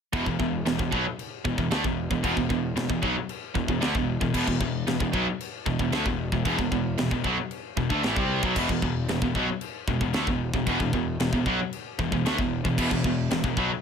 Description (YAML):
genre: heavy metal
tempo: 114 BPM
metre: 4/4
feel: straight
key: unclear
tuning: A4 = 440 Hz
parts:
  - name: distorted electric guitar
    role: riff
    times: 0.1-13.7 s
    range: E2 to C4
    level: -30 LUFS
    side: right 12 dB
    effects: overdrive
  - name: overdriven electric guitar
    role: riff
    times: 0.1-13.7 s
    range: E2 to C4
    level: -30 LUFS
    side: right 1 dB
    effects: none
  - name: scooped high-gain guitar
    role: riff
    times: 0.1-13.7 s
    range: E2 to C4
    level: -30 LUFS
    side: left 10 dB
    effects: distortion
  - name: fuzz picked electric bass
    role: bass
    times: 0.1-13.7 s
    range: E1 to D2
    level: -31 LUFS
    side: equal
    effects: overdrive
  - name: tight metal drum kit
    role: drums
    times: 0.1-13.7 s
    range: china cymbal, crash cymbal, kick drum, snare drum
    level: -30 LUFS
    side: equal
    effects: none
room: light reverb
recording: none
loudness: -24 LUFS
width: side -7 dB against mid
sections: 0.1-13.8 A section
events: none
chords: 0.1 E5